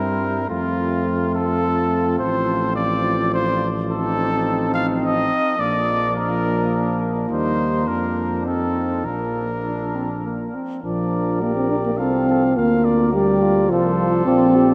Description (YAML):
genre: classical, brass quintet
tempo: 105 BPM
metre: 3/4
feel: rubato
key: F major, Bb major from 3.9 s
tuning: A4 = 439 Hz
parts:
  - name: warm trumpet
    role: melody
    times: 0.0-14.7 s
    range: F4 to F5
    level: -26 LUFS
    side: equal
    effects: none
  - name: dark trumpet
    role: second line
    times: 0.0-14.7 s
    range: D4 to D5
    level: -31 LUFS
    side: equal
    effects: none
  - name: clear French horn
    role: accompaniment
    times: 0.0-14.7 s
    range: Bb3 to G4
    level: -28 LUFS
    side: equal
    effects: none
  - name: mellow euphonium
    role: accompaniment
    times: 0.0-14.7 s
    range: F3 to D4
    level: -24 LUFS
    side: equal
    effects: none
  - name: mellow tuba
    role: bass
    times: 0.0-14.7 s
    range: A1 to G2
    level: -28 LUFS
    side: equal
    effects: none
room: wet cathedral reverb, RT60 5.4 s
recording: in a vast, echoing space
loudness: -20 LUFS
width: mono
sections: 0.0-10.8 A section; 10.8-14.7 B section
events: none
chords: 0.5 F; 2.2 F/A; 5.6 Bb; 7.3 Eb; 7.9 Bb/F; 8.5 F7; 9.1 Bb; 12.6 Bb/D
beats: | 0.49 1.07 1.64 | 2.21 2.77 3.34 | 3.90 4.46 5.03 | 5.59 6.16 6.73 | 7.30 7.88 8.46 | 9.05 9.65 10.24 | 10.83 11.41 11.99 | 12.56 13.14 13.71 | 14.27